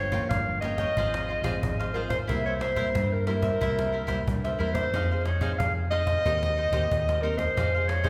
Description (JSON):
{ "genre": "samba and choro", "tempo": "91 BPM", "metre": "4/4", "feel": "straight", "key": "F minor", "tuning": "A4 = 438 Hz", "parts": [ { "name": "clear clarinet", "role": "melody", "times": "0.0-8.1 s", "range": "Bb4 to F5", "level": "-31 LUFS", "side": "equal", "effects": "none" }, { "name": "cavaquinho", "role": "accompaniment", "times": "0.0-8.1 s", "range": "Eb4 to G5", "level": "-36 LUFS", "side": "equal", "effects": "none" }, { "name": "nylon-string guitar", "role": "accompaniment", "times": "0.0-8.1 s", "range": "G2 to Ab4", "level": "-38 LUFS", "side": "equal", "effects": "none" }, { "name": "hollow-body short-scale fingered electric bass", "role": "bass", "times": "0.0-8.1 s", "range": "G1 to G2", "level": "-32 LUFS", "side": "equal", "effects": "none" }, { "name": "cajon", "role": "drums", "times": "0.1-8.1 s", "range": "none", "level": "-35 LUFS", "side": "equal", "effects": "none" } ], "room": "wet scoring stage reverb, RT60 1.9 s", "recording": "recorded in a church or concert hall", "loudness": "-27 LUFS", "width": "mono", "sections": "0.0-8.1 A section", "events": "none", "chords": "0.0 Gm7b5; 1.0 Fm/Ab; 2.3 C7; 4.9 Fm7; 6.3 Cm7/Eb; 7.6 Fm7" }